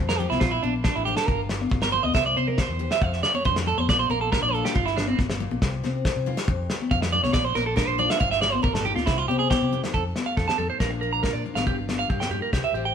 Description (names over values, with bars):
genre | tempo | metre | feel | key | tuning
highlife guitar band | 139 BPM | 4/4 | straight | F major | A4 = 440 Hz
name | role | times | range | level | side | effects
picked steel-string acoustic guitar | accompaniment | 0.0-12.9 s | F2 to A4 | -33 LUFS | left 8 dB | none
fingered electric bass | bass | 0.0-12.9 s | G1 to C3 | -30 LUFS | left 1 dB | none
electric guitar at the edge of break-up | arpeggios | 0.1-12.9 s | C4 to Bb5 | -24 LUFS | right 5 dB | none
warm soul drum kit | drums | 0.1-12.6 s | kick drum, snare drum | -26 LUFS | left 1 dB | none
congas | percussion | 0.2-12.4 s | none | -30 LUFS | left 4 dB | none
room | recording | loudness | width
moderate stone room reverb, RT60 1.2 s | band playing live in one room | -21 LUFS | side -8 dB against mid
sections
0.0-9.9 A section; 9.9-12.9 B section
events
clean electric guitar solo 0.0-9.9; drum fill 9.4-9.9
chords
0.4 Bb; 1.3 Gm7; 2.2 C; 3.0 F; 3.9 Bb; 4.8 Gm7; 5.6 C; 6.5 F; 7.3 Bb; 8.2 Gm7; 9.1 C; 9.9 F; 10.8 Bb; 11.7 Gm7